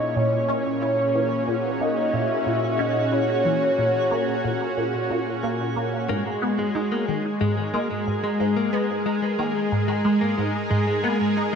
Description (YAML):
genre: ambient, sequencer-driven space music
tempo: 91 BPM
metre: 4/4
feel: straight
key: unclear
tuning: A4 = 439 Hz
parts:
  - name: soft octave-layered synth lead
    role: melody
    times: 0.0-5.1 s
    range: C#5 to E5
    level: -24 LUFS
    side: left 1 dB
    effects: chorus, tremolo, tape echo
  - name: lush unison pad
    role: sustained chords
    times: 0.0-11.6 s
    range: A#2 to C#5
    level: -25 LUFS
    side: equal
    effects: chorus
  - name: resonant blip pluck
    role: riff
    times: 0.0-11.5 s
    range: G#2 to E4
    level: -27 LUFS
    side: equal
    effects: phaser, ensemble chorus, cassette tape, tape echo
  - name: twinkling granular texture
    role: texture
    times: 0.0-11.6 s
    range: G#4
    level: -34 LUFS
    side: right 5 dB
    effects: built-in reverb
  - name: direct-recorded clean electric guitar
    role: arpeggios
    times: 6.1-11.6 s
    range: G#3 to A#3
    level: -28 LUFS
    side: moving between left 6 dB and equal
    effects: auto-pan, tape echo
room: wet plate reverb, RT60 2.6 s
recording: none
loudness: -21 LUFS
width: side -6 dB against mid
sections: 0.0-11.6 A section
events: none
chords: 0.0 A#dim; 6.1 G#sus2